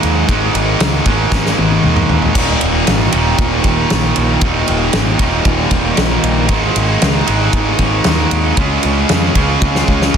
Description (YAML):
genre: quiet-loud alternative rock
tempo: 116 BPM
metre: 4/4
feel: straight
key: Eb mixolydian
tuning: A4 = 444 Hz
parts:
  - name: tonewheel organ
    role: sustained chords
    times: 0.0-10.2 s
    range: G4 to C6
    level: -30 LUFS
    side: equal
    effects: none
  - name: overdriven electric guitar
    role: riff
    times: 0.0-10.2 s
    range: Eb2 to Ab4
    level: -18 LUFS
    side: left 12 dB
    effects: none
  - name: tight distorted guitar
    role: riff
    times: 0.0-10.2 s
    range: Eb2 to Db4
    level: -17 LUFS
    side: right 12 dB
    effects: distortion
  - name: growling picked electric bass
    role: bass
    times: 0.0-10.2 s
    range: Eb1 to F2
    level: -18 LUFS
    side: equal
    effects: overdrive
  - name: loose indie drum kit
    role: drums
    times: 0.0-10.2 s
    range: crash cymbal, kick drum, ride cymbal, snare drum, splash cymbal, toms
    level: -16 LUFS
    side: equal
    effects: none
room: studio ambience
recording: dense, heavily limited modern master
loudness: -11 LUFS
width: side -7 dB against mid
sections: 0.0-10.2 A section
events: drum fill 1.3-2.4, 9.6-10.2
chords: 0.0 Abadd9; 2.4 Eb; 6.5 Abadd9; 8.6 Db6